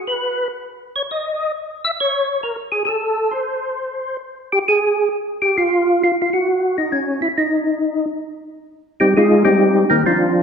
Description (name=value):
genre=jazz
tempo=134 BPM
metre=4/4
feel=swing 65% on 8ths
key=Db major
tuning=A4 = 440 Hz
part: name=percussive tonewheel organ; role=solo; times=0.1-10.4 s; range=Eb3 to Fb5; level=-16 LUFS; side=equal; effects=slow rotary speaker, chorus vibrato
room=wet recital hall reverb, RT60 1.7 s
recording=recorded in a church or concert hall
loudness=-16 LUFS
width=side -6 dB against mid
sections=0.0-8.2 A section; 8.2-10.4 B section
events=tonewheel organ solo 8.2-10.4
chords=0.0 N.C.; 8.2 Abmaj13